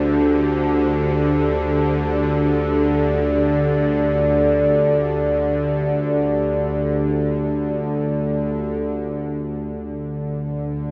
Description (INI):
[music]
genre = dark ambient drone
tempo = free time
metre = none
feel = none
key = unclear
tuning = A4 = 439 Hz
[part]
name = dark analog pad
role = sustained chords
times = 0.0-8.8 s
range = D4 to D5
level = -23 LUFS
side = equal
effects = chorus
[part]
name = bowed-like drone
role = drone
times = 0.0-10.9 s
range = D2 to D3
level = -24 LUFS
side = equal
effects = built-in reverb
[sound]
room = wet huge ambient reverb, RT60 7.5 s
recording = nothing above 7.8 kHz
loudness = -20 LUFS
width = mono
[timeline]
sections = 0.0-8.8 A section; 8.8-10.9 B section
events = none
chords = 0.0 D5